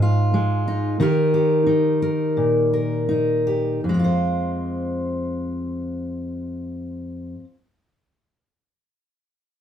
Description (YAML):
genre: folk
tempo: 77-94 BPM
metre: 4/4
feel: straight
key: F minor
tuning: A4 = 440 Hz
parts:
  - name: fingerpicked steel-string acoustic guitar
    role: accompaniment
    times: 0.0-7.5 s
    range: F2 to C5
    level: -19 LUFS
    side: equal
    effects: none
room: moderate studio ambience, RT60 0.5 s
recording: band playing live in one room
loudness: -19 LUFS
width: side -9 dB against mid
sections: 0.0-3.8 A section; 3.8-6.9 B section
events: slowing down 0.0-3.8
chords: 0.0 Dbsus2 (rootless); 1.0 Eb; 3.8 Fm